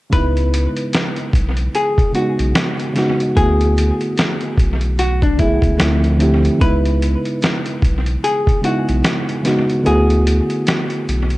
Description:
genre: lo-fi hip hop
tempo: 74 BPM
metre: 4/4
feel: swing 58% on 16ths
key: C# phrygian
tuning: A4 = 440 Hz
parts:
  - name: vintage hollow-body jazz guitar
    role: melody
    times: 0.1-11.4 s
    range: D4 to B4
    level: -22 LUFS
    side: left 1 dB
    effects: analog delay
  - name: reed electric piano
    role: accompaniment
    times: 0.1-11.4 s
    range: C#3 to G#4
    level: -19 LUFS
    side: equal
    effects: none
  - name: warm sub bass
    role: bass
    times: 0.1-11.4 s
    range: B1 to D2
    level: -17 LUFS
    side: equal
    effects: none
  - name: dusty soul sampler-style drum kit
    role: drums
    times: 0.1-11.4 s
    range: hi-hat, kick drum, snare drum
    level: -18 LUFS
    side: equal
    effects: vintage 12-bit sampler grit, analog delay
room: light reverb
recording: echo-heavy mix, cassette tape, lossy compression artefacts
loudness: -14 LUFS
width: side -18 dB against mid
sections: 0.1-11.4 A section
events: kick muted 9.9-11.4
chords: 0.1 C#m9; 3.4 D6; 5.8 Dm9; 6.6 C#m9; 9.9 D6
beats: | 0.12 0.93 1.74 2.55 | 3.36 4.17 4.99 5.80 | 6.61 7.42 8.23 9.04 | 9.85 10.66

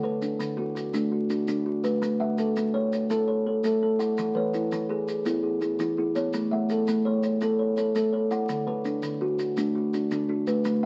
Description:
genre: southern african traditional, mbira-style interlocking cycle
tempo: 111 BPM (dotted quarters)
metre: 12/8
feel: straight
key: A major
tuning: A4 = 440 Hz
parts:
  - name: kalimba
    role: arpeggios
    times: 0.0-10.9 s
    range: D3 to F#5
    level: -29 LUFS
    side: equal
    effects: none
  - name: kalimba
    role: arpeggios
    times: 0.0-10.9 s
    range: D3 to F#5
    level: -30 LUFS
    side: equal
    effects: none
  - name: maracas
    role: percussion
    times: 0.2-10.8 s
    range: none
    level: -46 LUFS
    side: equal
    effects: none
room: moderate studio reverb, RT60 0.8 s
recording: very old 78 rpm record, vinyl crackle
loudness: -27 LUFS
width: mono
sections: 0.0-10.9 A section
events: none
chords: 0.0 D; 2.0 A; 4.2 E; 6.3 A; 8.5 D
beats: 0.40 0.94 1.48 | 2.02 2.56 3.10 3.64 | 4.18 4.72 5.26 5.80 | 6.33 6.88 7.41 7.95 | 8.49 9.03 9.57 10.11 | 10.65

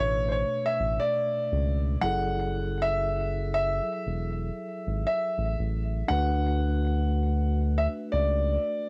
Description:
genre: contemporary R&B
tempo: 59 BPM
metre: 4/4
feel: swing 58% on 16ths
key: unclear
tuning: A4 = 440 Hz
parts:
  - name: clear concert grand piano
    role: melody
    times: 0.0-8.9 s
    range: C5 to F#5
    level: -31 LUFS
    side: equal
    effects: cassette tape, plate reverb, tape echo
  - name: mellow tine electric piano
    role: accompaniment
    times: 0.0-8.9 s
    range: B2 to B4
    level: -37 LUFS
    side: equal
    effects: none
  - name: round analog bass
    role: bass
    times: 0.0-8.6 s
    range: E1 to D2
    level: -30 LUFS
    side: equal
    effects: none
room: light reverb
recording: home recording on cassette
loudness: -27 LUFS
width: mono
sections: 0.0-8.9 A section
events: none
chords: 0.0 Bm9; 2.0 F#m9; 6.1 D6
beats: 1.01 | 2.02 3.04 4.06 5.08 | 6.09 7.11 8.13

